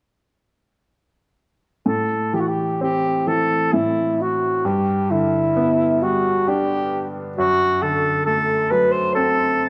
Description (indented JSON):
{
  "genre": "celtic folk, Celtic slow air",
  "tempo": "66 BPM",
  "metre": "3/4",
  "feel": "rubato",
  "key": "A dorian",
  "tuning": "A4 = 440 Hz",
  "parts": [
    { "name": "warm alto saxophone", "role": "melody", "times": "1.9-9.7 s", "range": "E4 to C5", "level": "-21 LUFS", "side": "equal", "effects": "none" },
    { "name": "bright upright piano", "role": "accompaniment", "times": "1.9-9.7 s", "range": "F#2 to D4", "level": "-25 LUFS", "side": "equal", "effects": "none" }
  ],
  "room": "moderate scoring stage reverb, RT60 1.6 s",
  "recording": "none",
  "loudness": "-20 LUFS",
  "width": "mono",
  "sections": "1.9-9.7 A section",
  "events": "none",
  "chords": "1.9 Am; 4.6 G; 7.4 D7/F#",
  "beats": "| 1.85 2.80 3.73 | 4.65 5.56 6.47 | 7.37 8.26 9.15"
}